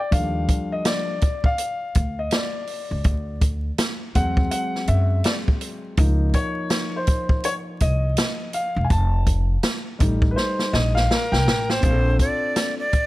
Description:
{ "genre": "hip hop, jazz-hop", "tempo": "82 BPM", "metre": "4/4", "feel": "swing 61% on 16ths", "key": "Bb major", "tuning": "A4 = 442 Hz", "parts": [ { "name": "dark baby grand piano", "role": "accompaniment", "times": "0.0-12.8 s", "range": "F3 to A5", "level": "-26 LUFS", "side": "left 2 dB", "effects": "none" }, { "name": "upright bass", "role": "bass", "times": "0.1-12.2 s", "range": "E1 to F#2", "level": "-22 LUFS", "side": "equal", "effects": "none" }, { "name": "open jazz drum kit", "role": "drums", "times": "0.1-13.1 s", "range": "hi-hat, kick drum, snare drum", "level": "-21 LUFS", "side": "equal", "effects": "none" }, { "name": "breathy alto recorder", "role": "melody", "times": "11.1-13.1 s", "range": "Bb4 to D5", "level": "-24 LUFS", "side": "equal", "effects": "none" } ], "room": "small room reverb", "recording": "vinyl crackle", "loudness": "-19 LUFS", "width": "side -17 dB against mid", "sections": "0.0-11.8 A section; 11.8-13.1 B section", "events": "grand piano solo 0.0-11.8; drum fill 10.4-11.8", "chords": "0.1 Ebmaj9#11; 3.0 D7#11; 6.0 Db6; 8.9 F7; 11.8 Bbmaj9" }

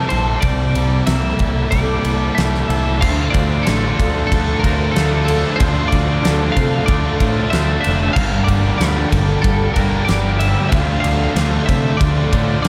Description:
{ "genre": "rock, shoegaze and dream pop", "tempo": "94 BPM", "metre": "4/4", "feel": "straight", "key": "D minor", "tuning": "A4 = 440 Hz", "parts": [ { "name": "twelve-string electric guitar", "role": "melody", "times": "0.0-12.7 s", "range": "A4 to F5", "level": "-26 LUFS", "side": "equal", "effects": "tape echo" }, { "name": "picked plugged-in twelve-string acoustic guitar", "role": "arpeggios", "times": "0.0-12.7 s", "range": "G4 to A5", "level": "-30 LUFS", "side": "equal", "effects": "ensemble chorus, tape echo" }, { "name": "biting overdriven guitar", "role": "riff", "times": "0.0-12.7 s", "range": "G2 to A4", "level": "-26 LUFS", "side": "equal", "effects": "reverse reverb" }, { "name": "thick fuzz guitar", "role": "riff", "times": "0.0-12.7 s", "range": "G2 to A4", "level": "-24 LUFS", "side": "equal", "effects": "distortion, ensemble chorus" }, { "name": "growling picked electric bass", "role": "bass", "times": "0.0-12.7 s", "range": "F1 to C3", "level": "-22 LUFS", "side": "equal", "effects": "overdrive" }, { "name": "huge arena drum kit", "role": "drums", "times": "0.1-12.7 s", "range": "crash cymbal, kick drum, ride cymbal, snare drum", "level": "-22 LUFS", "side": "equal", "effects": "none" }, { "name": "cranked stack guitar", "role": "riff", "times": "3.0-12.7 s", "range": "G2 to D4", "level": "-28 LUFS", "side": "equal", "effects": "none" } ], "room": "wet cathedral reverb, RT60 5.8 s", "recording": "dreamy mix soaked in reverb", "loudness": "-16 LUFS", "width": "mono", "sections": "0.0-3.0 A section; 3.0-12.7 B section", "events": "none", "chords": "0.0 C13; 3.0 Dm; 8.2 Gmadd9; 10.7 Dm" }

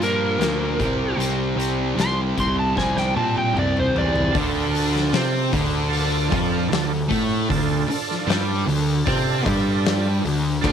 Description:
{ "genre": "blues rock power trio and southern rock", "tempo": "76 BPM", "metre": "4/4", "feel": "straight", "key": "D minor", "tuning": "A4 = 440 Hz", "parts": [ { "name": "overdriven slide guitar", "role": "melody", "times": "0.0-4.3 s", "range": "Bb4 to C6", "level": "-24 LUFS", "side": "right 1 dB", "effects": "slapback echo" }, { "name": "thick fuzz guitar", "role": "riff", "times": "0.0-10.7 s", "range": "Bb2 to C4", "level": "-23 LUFS", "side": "equal", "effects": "distortion" }, { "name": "fuzz picked electric bass", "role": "bass", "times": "0.0-10.7 s", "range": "C2 to C3", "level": "-24 LUFS", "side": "right 1 dB", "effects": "overdrive" }, { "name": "oversized low-tuned drum kit", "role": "drums", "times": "0.0-10.7 s", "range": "crash cymbal, hi-hat, kick drum, snare drum, toms", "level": "-26 LUFS", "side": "left 4 dB", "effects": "none" }, { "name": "overdriven tonewheel organ", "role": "sustained chords", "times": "4.3-10.7 s", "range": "D4 to D5", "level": "-29 LUFS", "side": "right 16 dB", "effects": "chorus vibrato, wide subtle chorus" } ], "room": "studio reverb", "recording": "1960s-style stereo", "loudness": "-19 LUFS", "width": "side -8 dB against mid", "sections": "0.0-4.3 A section; 4.3-10.7 B section", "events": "drum fill 2.8-4.3", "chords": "0.0 Bb; 0.8 C5; 4.3 Dm" }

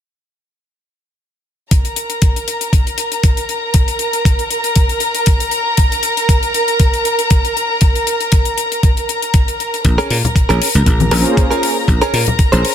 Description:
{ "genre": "nu-disco, nu disco", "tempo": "118 BPM", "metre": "4/4", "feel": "swing 54% on 16ths", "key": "Bb minor", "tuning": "A4 = 440 Hz", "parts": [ { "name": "dark chamber string section", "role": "sustained chords", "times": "1.7-12.7 s", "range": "Bb4 to Bb5", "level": "-18 LUFS", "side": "equal", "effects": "sidechain pumping" }, { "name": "electronic kick drum", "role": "drums", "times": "1.7-12.5 s", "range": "none", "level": "-12 LUFS", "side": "equal", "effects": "studio reverb" }, { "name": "hi-hat", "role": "drums", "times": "1.7-12.7 s", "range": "none", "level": "-21 LUFS", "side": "left 8 dB", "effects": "studio reverb" }, { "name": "dry thumbed slap bass", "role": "bass", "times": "9.8-12.6 s", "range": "Bb1 to Bb2", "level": "-14 LUFS", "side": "equal", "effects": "sidechain pumping" }, { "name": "direct-recorded clean electric guitar", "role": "riff", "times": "10.0-12.7 s", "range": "Db4 to C5", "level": "-18 LUFS", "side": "right 2 dB", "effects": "wide subtle chorus, ping-pong delay" }, { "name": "congas", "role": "percussion", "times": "10.2-12.4 s", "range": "none", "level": "-18 LUFS", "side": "left 3 dB", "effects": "none" }, { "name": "warm analog pad", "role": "accompaniment", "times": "11.1-11.4 s", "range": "Bb3 to C5", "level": "-20 LUFS", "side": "equal", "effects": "chorus, sidechain pumping, ping-pong delay" } ], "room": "studio ambience", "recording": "none", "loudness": "-12 LUFS", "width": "side -10 dB against mid", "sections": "1.7-12.7 A section", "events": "none", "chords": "1.7 N.C.; 9.8 Bbm7" }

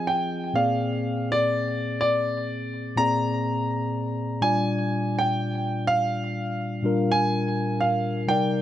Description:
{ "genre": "R&B", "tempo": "62 BPM", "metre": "4/4", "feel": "swing 58% on 16ths", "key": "unclear", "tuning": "A4 = 440 Hz", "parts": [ { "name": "warm grand piano", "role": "melody", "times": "0.0-8.6 s", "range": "D5 to Bb5", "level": "-25 LUFS", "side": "right 1 dB", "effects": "tape echo" }, { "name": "mellow tine electric piano", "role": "accompaniment", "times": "0.0-8.6 s", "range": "Bb2 to Eb5", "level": "-26 LUFS", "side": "left 1 dB", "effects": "none" } ], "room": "light reverb", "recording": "none", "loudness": "-22 LUFS", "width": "side -12 dB against mid", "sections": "0.0-8.6 A section", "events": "none", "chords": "0.0 Fm7; 0.6 Bb9; 4.4 Gm7/Bb" }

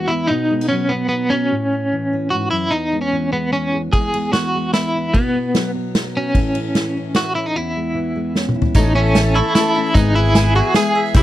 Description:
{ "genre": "indie folk with a building arrangement", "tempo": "149 BPM", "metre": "3/4", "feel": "straight", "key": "E major", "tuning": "A4 = 440 Hz", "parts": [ { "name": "electric guitar at the edge of break-up", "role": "melody", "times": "0.0-11.2 s", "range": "B3 to G#4", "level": "-19 LUFS", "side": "equal", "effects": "tremolo" }, { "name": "fingerpicked steel-string acoustic guitar", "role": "accompaniment", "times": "0.0-10.0 s", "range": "E2 to A4", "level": "-23 LUFS", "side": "equal", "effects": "none" }, { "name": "unplugged drum kit", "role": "drums", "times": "3.9-11.2 s", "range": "hi-hat, kick drum, ride cymbal, snare drum, toms", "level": "-17 LUFS", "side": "equal", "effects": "none" }, { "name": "warm cello", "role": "second line", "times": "8.8-11.2 s", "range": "G4 to A4", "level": "-24 LUFS", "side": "equal", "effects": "none" }, { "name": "picked steel-string acoustic guitar", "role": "accompaniment", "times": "8.8-11.2 s", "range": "A2 to A4", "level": "-22 LUFS", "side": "left 7 dB", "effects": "none" }, { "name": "mandolin", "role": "arpeggios", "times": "8.8-11.2 s", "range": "B4 to C#6", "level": "-24 LUFS", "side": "right 6 dB", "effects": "none" }, { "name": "fingered electric bass", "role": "bass", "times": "8.8-11.2 s", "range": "G#1 to C2", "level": "-16 LUFS", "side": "equal", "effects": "none" }, { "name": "tambourine", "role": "percussion", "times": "8.8-11.2 s", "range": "none", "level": "-36 LUFS", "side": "right 10 dB", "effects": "none" }, { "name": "group handclap", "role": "percussion", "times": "11.2 s", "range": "none", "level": "-28 LUFS", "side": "left 9 dB", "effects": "none" } ], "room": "little or no reverb", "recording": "dry, close 1970s-style studio recording", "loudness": "-15 LUFS", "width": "side -14 dB against mid", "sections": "0.0-8.8 A section; 8.8-11.2 B section", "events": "drum fill 8.4-8.8", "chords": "0.3 B; 1.5 A; 2.7 C#m/E; 3.9 E; 5.1 B; 6.3 A; 7.6 C#m/E; 8.8 A; 10.0 E/G#" }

